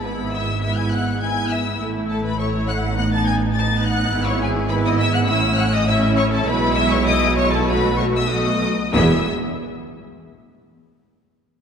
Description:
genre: quick classical-period movement for string orchestra.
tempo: 94-104 BPM.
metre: 4/4.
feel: straight.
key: E major.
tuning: A4 = 437 Hz.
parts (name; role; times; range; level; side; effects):
warm symphonic violin section; melody; 0.0-9.3 s; G#5 to A6; -24 LUFS; left 4 dB; none.
warm symphonic violin section; second line; 0.0-9.3 s; G#4 to A5; -26 LUFS; left 3 dB; none.
clear symphonic viola section; accompaniment; 0.0-9.3 s; G#3 to G#4; -23 LUFS; right 1 dB; none.
rich studio cello section; bass; 0.0-9.3 s; E2 to B2; -23 LUFS; right 1 dB; none.
rich symphonic double bass section; bass; 0.0-9.3 s; E1 to B1; -24 LUFS; right 2 dB; none.
room: wet concert hall reverb, RT60 2.4 s.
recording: dark, warm production.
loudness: -17 LUFS.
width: side -7 dB against mid.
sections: 0.0-8.9 A section; 8.9-11.4 B section.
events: slowing down 3.0-8.9.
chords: 0.0 E/G#; 1.8 A5; 3.0 B7/A; 4.1 E/G#; 5.3 A; 6.5 E/B; 7.7 B7; 8.9 E.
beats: 0.04 0.63 1.22 | 1.80 2.39 2.97 3.55 | 4.13 4.71 5.29 5.88 | 6.47 7.07 7.68 8.30 | 8.93.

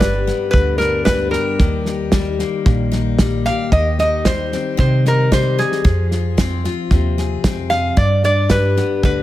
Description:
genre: honky-tonk and classic country.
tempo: 113 BPM.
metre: 4/4.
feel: straight.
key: C minor.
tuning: A4 = 440 Hz.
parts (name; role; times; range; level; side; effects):
lap resonator guitar; melody; 0.0-9.2 s; Ab4 to F5; -19 LUFS; right 1 dB; none.
picked steel-string acoustic guitar; accompaniment; 0.0-9.2 s; G2 to Ab4; -22 LUFS; left 7 dB; none.
upright bass; bass; 0.0-9.2 s; G1 to C3; -19 LUFS; right 1 dB; none.
damped 70s drum kit; drums; 0.0-9.2 s; hi-hat, kick drum, snare drum; -17 LUFS; right 1 dB; none.
room: light reverb.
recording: close, detailed microphones.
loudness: -14 LUFS.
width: side -14 dB against mid.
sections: 0.0-9.2 A section.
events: none.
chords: 0.0 G; 1.6 Eb; 3.7 Cm/Eb; 5.8 Fm; 8.0 G.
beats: 0.01 0.54 1.07 | 1.60 2.13 2.66 3.19 | 3.72 4.25 4.79 5.32 | 5.85 6.38 6.91 7.44 | 7.97 8.50 9.03.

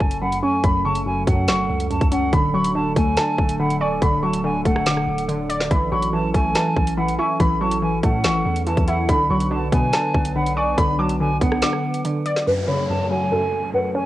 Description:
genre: hip hop, drill.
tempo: 142 BPM.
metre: 4/4.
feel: half-time.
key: F# minor.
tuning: A4 = 444 Hz.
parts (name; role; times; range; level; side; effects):
dark concert grand piano; melody; 0.0-14.1 s; A4 to D6; -24 LUFS; equal; low-pass filter, cassette tape, analog delay.
hollow concert flute; second line; 0.0-14.1 s; F#5 to B5; -26 LUFS; right 1 dB; analog delay.
warbly dusty pluck; accompaniment; 0.0-14.1 s; F#2 to D5; -23 LUFS; left 1 dB; chorus, low-pass filter.
warbly tape-like pad; sustained chords; 0.0-14.1 s; F#3 to B4; -30 LUFS; right 3 dB; chorus, built-in reverb, low-pass filter.
long sustained 808-style bass; bass; 0.0-11.6 s; D1 to B2; -28 LUFS; equal; none.
drill drum kit; drums; 0.0-12.5 s; hi-hat, kick drum, rim click, snare drum; -21 LUFS; equal; vintage 12-bit sampler grit, cassette tape.
downlifter; sound effects; 12.5-14.1 s; none; -31 LUFS; equal; none.
room: moderate spring reverb, RT60 1.5 s.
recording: home recording on cassette.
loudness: -18 LUFS.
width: side -15 dB against mid.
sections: 0.0-12.5 A section; 12.5-14.1 B section.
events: break 11.6-12.5.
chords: 0.0 F#m; 2.3 D; 5.7 A6; 9.1 Bm; 12.5 F#m.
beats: 0.22 | 0.64 1.06 1.48 1.91 | 2.33 2.75 3.17 3.60 | 4.02 4.44 4.86 5.29 | 5.71 6.13 6.55 6.98 | 7.40 7.82 8.24 8.67 | 9.09 9.51 9.93 10.36 | 10.78 11.20 11.62 12.05 | 12.47 12.89 13.31 13.74.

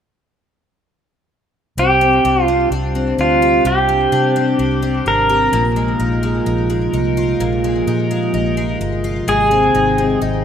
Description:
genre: dream pop.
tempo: 64 BPM.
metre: 4/4.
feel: straight.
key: C minor.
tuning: A4 = 440 Hz.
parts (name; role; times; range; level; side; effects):
pedal steel guitar; melody; 1.8-10.2 s; F4 to Bb4; -16 LUFS; right 1 dB; tape echo.
warbly tape-like pad; sustained chords; 2.5-10.4 s; C3 to G5; -22 LUFS; right 2 dB; chorus, built-in reverb.
picked twelve-string acoustic guitar; arpeggios; 1.8-10.4 s; Bb2 to G4; -20 LUFS; left 4 dB; analog chorus, tape echo.
vintage muted fingered electric bass; bass; 1.8-10.4 s; G1 to C3; -21 LUFS; equal; none.
room: light reverb.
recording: rough home demo mix.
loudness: -13 LUFS.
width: side -8 dB against mid.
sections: 1.8-10.4 A section.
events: none.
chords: 1.8 Csus2; 5.5 Bb7sus4; 9.3 Abmaj7.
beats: | 1.77 2.71 3.65 4.59 | 5.53 6.46 7.40 8.34 | 9.28 10.21.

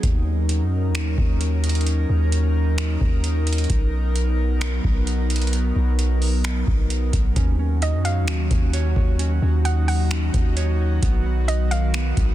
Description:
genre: hip hop, atmospheric cloud-rap.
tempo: 131 BPM.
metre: 4/4.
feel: half-time.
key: Eb minor.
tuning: A4 = 440 Hz.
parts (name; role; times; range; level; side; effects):
airy breathy pad; sustained chords; 0.0-12.3 s; Eb3 to Bb4; -28 LUFS; equal; chorus, sidechain pumping.
long sustained 808-style bass; bass; 0.0-12.3 s; B1 to Gb2; -20 LUFS; equal; none.
booming analog drum machine; drums; 0.0-12.3 s; finger snaps, hi-hat, kick drum; -24 LUFS; equal; soft clipping on snare.
mellow electric guitar; arpeggios; 7.4-12.3 s; B3 to Db5; -32 LUFS; right 9 dB; digital delay.
hollow square pluck; melody; 7.8-12.3 s; Eb5 to Gb5; -30 LUFS; right 3 dB; chorus, digital delay.
room: little or no reverb.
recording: dense, heavily limited modern master.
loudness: -18 LUFS.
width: side -14 dB against mid.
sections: 0.0-7.4 A section; 7.4-12.3 B section.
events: none.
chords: 0.0 Ebm7; 3.7 Bmaj7; 7.4 Ebm7; 11.0 Bmaj7.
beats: | 0.03 0.49 0.95 1.41 | 1.86 2.32 2.78 3.24 | 3.70 4.16 4.61 5.07 | 5.53 5.99 6.45 6.90 | 7.36 7.82 8.28 8.73 | 9.19 9.65 10.11 10.57 | 11.03 11.48 11.94.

